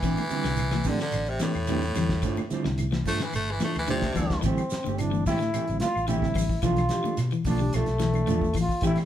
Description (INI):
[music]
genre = afrobeat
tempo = 109 BPM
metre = 4/4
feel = straight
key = A minor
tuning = A4 = 441 Hz
[part]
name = raspy baritone saxophone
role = melody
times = 0.0-4.4 s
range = A2 to A3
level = -29 LUFS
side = equal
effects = none
[part]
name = electric guitar at the edge of break-up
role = arpeggios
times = 0.0-9.1 s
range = D3 to E3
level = -31 LUFS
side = left 5 dB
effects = none
[part]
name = fingered electric bass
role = bass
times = 0.0-9.0 s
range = G1 to B2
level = -30 LUFS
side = equal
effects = none
[part]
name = cloth-damped thuddy drum kit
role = drums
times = 0.0-9.1 s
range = hi-hat, kick drum, snare drum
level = -33 LUFS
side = equal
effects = none
[part]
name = congas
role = percussion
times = 0.0-8.7 s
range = none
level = -36 LUFS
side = left 1 dB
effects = none
[part]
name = shekere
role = percussion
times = 0.0-9.1 s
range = none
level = -38 LUFS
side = right 6 dB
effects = none
[part]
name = mellow electric guitar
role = stabs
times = 0.1-9.0 s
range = E3 to C5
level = -33 LUFS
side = right 7 dB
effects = none
[part]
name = claves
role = percussion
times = 0.2-9.1 s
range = none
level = -47 LUFS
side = left 3 dB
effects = none
[part]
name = mellow reed electric piano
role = accompaniment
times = 0.3-9.0 s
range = D3 to A4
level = -33 LUFS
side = right 3 dB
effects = fast tremolo
[part]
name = warm trombone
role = melody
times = 3.9-9.0 s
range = A3 to F4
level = -30 LUFS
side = left 1 dB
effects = none
[sound]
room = light reverb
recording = band playing live in one room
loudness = -24 LUFS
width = side -11 dB against mid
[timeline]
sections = 0.0-4.4 A section; 4.4-9.1 B section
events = baritone saxophone solo 0.0-4.4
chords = 0.0 Am11; 2.2 G9sus4; 4.4 Am7; 6.6 Bm7b5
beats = | 0.03 0.58 1.13 1.68 | 2.23 2.78 3.33 3.88 | 4.43 4.98 5.53 6.08 | 6.63 7.18 7.73 8.28 | 8.83